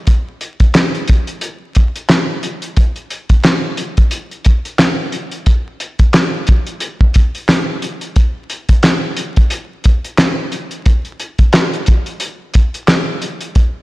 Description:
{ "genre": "hip hop", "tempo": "89 BPM", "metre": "4/4", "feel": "swing 58% on 16ths", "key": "none", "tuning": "none", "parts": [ { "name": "cloth-damped thuddy drum kit", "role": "drums", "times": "0.1-13.7 s", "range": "handclaps, hi-hat, kick drum, snare drum", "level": "-12 LUFS", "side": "equal", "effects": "none" } ], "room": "moderate echo chamber reverb, RT60 1.8 s", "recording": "blown-out, overdriven recording, vinyl crackle, overdrive", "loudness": "-12 LUFS", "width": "side -19 dB against mid", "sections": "0.0-13.8 A section", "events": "none", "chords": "none", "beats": "| 0.07 0.75 1.42 2.10 | 2.77 3.44 4.12 4.79 | 5.46 6.14 6.81 7.49 | 8.16 8.84 9.51 10.18 | 10.86 11.53 12.21 12.88 | 13.55" }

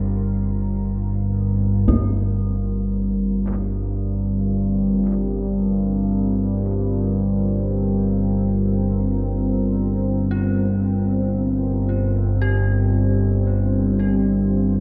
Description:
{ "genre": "dark ambient drone", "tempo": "free time", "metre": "none", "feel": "none", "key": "G minor", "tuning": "A4 = 440 Hz", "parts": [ { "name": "deep dark ambient pad", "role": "sustained chords", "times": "0.0-14.8 s", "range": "G3 to Bb4", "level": "-28 LUFS", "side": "equal", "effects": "chorus, built-in reverb" }, { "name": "dark detuned synth bell", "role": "arpeggios", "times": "0.0-14.8 s", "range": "D4 to G4", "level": "-38 LUFS", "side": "equal", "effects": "chorus, analog delay" }, { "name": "analog drone", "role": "drone", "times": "0.0-14.8 s", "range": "G1 to G2", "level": "-22 LUFS", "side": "equal", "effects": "chorus" }, { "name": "bronze singing bowl", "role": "texture", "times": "0.0-1.9 s", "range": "none", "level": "barely audible", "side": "none", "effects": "none" }, { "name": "taiko ensemble", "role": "percussion", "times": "1.9-2.1 s", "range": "none", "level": "-25 LUFS", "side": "equal", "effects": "low-pass filter on perc, analog delay" } ], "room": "wet spring reverb, RT60 2.6 s", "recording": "echo-heavy mix", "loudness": "-21 LUFS", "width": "mono", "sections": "0.0-1.9 A section; 1.9-14.8 B section", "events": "fade-in on synth bell 1.9-14.8", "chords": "0.0 Gm7", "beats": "free time" }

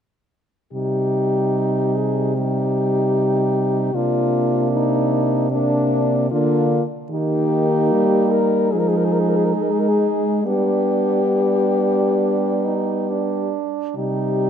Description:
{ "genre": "classical, lyrical piece for horn quartet", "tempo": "66-77 BPM", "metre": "4/4", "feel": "rubato", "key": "C minor", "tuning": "A4 = 439 Hz", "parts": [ { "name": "warm French horn", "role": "melody", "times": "0.7-14.5 s", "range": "D4 to Bb4", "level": "-22 LUFS", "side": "left 7 dB", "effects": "none" }, { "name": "clear French horn", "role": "second line", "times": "0.7-14.5 s", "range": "D4 to Eb4", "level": "-24 LUFS", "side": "right 12 dB", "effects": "none" }, { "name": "dark French horn", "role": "accompaniment", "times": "0.7-14.5 s", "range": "G3 to B3", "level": "-23 LUFS", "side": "left 2 dB", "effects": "none" }, { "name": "warm French horn", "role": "bass", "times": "0.7-14.5 s", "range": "C3 to Ab3", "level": "-23 LUFS", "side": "right 3 dB", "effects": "none" } ], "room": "light reverb", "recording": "close, detailed microphones", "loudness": "-17 LUFS", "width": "side -8 dB against mid", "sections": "0.7-14.5 A section", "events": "none", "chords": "0.7 Cm; 3.9 Bb/C; 7.1 Eb; 8.7 Fm7; 10.5 G; 14.0 Cm", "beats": "| 0.73 1.57 2.37 3.16 | 3.94 4.73 5.53 6.32 | 7.12 7.93 8.73 9.57 | 10.45 11.35 12.22 13.09 | 13.97" }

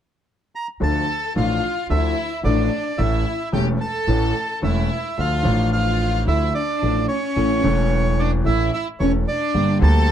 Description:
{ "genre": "tango", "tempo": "110 BPM", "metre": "4/4", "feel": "rubato", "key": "D harmonic minor", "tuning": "A4 = 443 Hz", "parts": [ { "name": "bandoneon", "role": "melody", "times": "0.6-10.1 s", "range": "C#5 to Bb5", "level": "-25 LUFS", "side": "right 2 dB", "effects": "none" }, { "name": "clear concert grand piano", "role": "accompaniment", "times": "0.8-10.1 s", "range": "E1 to A4", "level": "-23 LUFS", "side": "left 1 dB", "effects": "none" }, { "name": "upright bass", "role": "bass", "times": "0.8-10.1 s", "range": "E1 to D2", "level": "-21 LUFS", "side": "right 1 dB", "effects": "none" }, { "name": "rich studio violin section", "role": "second line", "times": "0.9-10.1 s", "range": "C#4 to A4", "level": "-25 LUFS", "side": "left 1 dB", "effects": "none" } ], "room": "little or no reverb", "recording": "dark, warm production", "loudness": "-18 LUFS", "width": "side -10 dB against mid", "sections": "0.8-5.2 A section; 5.2-10.1 B section", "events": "none", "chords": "0.0 N.C.; 0.8 Dm; 3.0 A; 5.2 Dm; 7.4 A; 9.5 Gm", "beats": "0.26 | 0.81 1.36 1.90 2.45 | 2.99 3.54 4.08 4.63 | 5.18 5.73 6.28 6.83 | 7.37 7.92 8.46 9.00 | 9.54 10.09" }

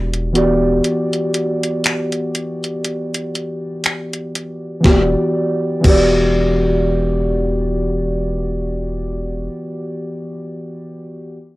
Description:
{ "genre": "contemporary R&B", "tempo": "60 BPM", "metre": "4/4", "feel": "swing 58% on 16ths", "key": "E minor", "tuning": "A4 = 439 Hz", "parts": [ { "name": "muted felt-like synth keys", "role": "accompaniment", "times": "0.0-11.4 s", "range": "E3 to D5", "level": "-18 LUFS", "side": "equal", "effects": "chorus" }, { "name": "long sustained 808-style bass", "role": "bass", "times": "0.0-9.5 s", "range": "E1", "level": "-21 LUFS", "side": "equal", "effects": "none" }, { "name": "gated 80s digital drum machine", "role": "drums", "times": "0.1-6.2 s", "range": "crash cymbal, finger snaps, hi-hat, kick drum, snare drum", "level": "-18 LUFS", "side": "equal", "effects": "gated reverb, gated reverb snare, cassette tape" } ], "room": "little or no reverb", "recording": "home recording on cassette", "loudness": "-16 LUFS", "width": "side -19 dB against mid", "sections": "0.0-4.8 A section; 4.8-8.8 B section", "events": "break 0.8-4.8", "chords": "0.0 Em7", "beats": "| 0.84 1.84 2.84 3.84 | 4.84 5.84 6.84 7.84" }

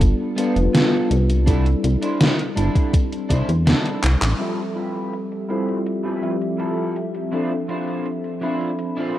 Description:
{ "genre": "vaporwave", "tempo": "82 BPM", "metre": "4/4", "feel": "straight", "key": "unclear", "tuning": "A4 = 440 Hz", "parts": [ { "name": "mellow tine electric piano", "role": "accompaniment", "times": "0.0-9.2 s", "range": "F3 to B5", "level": "-24 LUFS", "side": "equal", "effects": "medium stereo tremolo, lush chorus, tape echo" }, { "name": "chorused synth bass", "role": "bass", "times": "0.0-4.3 s", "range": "F1 to E2", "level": "-18 LUFS", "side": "equal", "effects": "none" }, { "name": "electronic kick drum", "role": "drums", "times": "0.0-3.5 s", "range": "none", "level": "-18 LUFS", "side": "equal", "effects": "overdrive" }, { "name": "gated 80s digital drum machine", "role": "drums", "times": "0.0-9.2 s", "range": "handclaps, hi-hat, snare drum", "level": "-21 LUFS", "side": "equal", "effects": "gated reverb, gated reverb snare, overdrive, low-pass filter on hats, low-pass filter on snare, low-pass filter on room" }, { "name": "electric guitar at the edge of break-up", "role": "riff", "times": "0.4-9.2 s", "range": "F3 to C5", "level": "-28 LUFS", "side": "equal", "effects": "analog chorus, low-pass filter, tape echo" }, { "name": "warbly tape-like pad", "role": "sustained chords", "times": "5.1-9.2 s", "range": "F3 to E5", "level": "-30 LUFS", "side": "left 4 dB", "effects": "chorus, built-in reverb, phaser" } ], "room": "light reverb", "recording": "rough home demo mix", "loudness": "-18 LUFS", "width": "side -13 dB against mid", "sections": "0.0-4.4 A section; 4.4-9.2 B section", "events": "kick drops out 3.7-4.4; drum fill 4.0-4.4; band accent 4.2-4.6; filter sweep on clean electric guitar 4.4-9.2", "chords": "0.0 G9; 1.5 C69; 4.4 Fmaj9; 7.3 Dm9/F", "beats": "0.01 0.74 | 1.47 2.21 2.94 3.67 | 4.40 5.13 5.86 6.59 | 7.33 8.06 8.79" }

